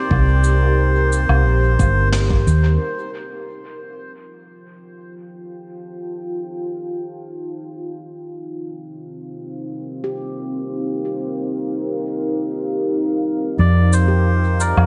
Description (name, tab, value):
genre	ambient dub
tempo	free time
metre	none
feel	none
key	unclear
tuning	A4 = 441 Hz
part	melodica	melody	0.0-2.1, 13.6-14.9 s	Bb4 to D5	-26 LUFS	equal	tape echo
part	deep dark ambient pad	sustained chords	0.0-14.9 s	C4 to A5	-27 LUFS	equal	chorus, built-in reverb
part	hollow-body short-scale fingered electric bass	bass	0.1-2.8, 13.6-14.9 s	G1 to F2	-17 LUFS	equal	none
part	electronic kick drum	drums	0.1-2.4 s	none	-22 LUFS	equal	none
part	cabasa, woodblock and snare drum	drums	0.4-2.6, 13.9-14.9 s	none	-30 LUFS	equal	dub echo
part	handpan	arpeggios	10.0-14.9 s	G4	-33 LUFS	equal	tape echo
room	moderate lush hall reverb, RT60 1.9 s, small room ambience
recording	nothing above 10.3 kHz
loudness	-19 LUFS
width	mono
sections	0.0-2.8 A section; 2.8-13.6 B section; 13.6-14.9 C section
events	band accent 2.1-2.5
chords	0.0 Cm7; 2.8 F9; 8.2 Cm7; 13.6 F9